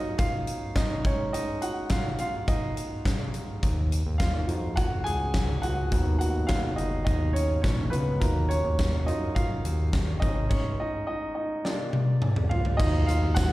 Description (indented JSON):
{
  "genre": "piano-driven pop",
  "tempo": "105 BPM",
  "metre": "4/4",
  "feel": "straight",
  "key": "Eb minor",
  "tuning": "A4 = 440 Hz",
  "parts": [
    { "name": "warm concert grand piano", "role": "accompaniment", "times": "0.0-13.5 s", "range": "Gb3 to Ab5", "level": "-30 LUFS", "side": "right 1 dB", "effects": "slapback echo" },
    { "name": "huge arena drum kit", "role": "drums", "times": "0.2-13.5 s", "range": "crash cymbal, hi-hat, kick drum, snare drum, toms", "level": "-28 LUFS", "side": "equal", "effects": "none" },
    { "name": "fat analog bass", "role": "bass", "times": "3.6-13.5 s", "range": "F#1 to Gb2", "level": "-26 LUFS", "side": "equal", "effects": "none" },
    { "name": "tambourine", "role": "percussion", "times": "12.8-13.5 s", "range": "none", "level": "-46 LUFS", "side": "left 3 dB", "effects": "none" }
  ],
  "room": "studio reverb",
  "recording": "live gig heard through the venue's PA, recital hall reverb",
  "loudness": "-24 LUFS",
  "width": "side -17 dB against mid",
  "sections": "0.0-12.8 A section",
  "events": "grand piano solo 0.0-12.8; drum fill 11.7-12.8",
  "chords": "0.0 Ebmadd9; 1.0 Absus4; 3.6 Ebmadd9; 5.9 B; 8.2 Ebmadd9; 10.2 Absus4; 11.7 Bb; 12.8 Ebmadd9"
}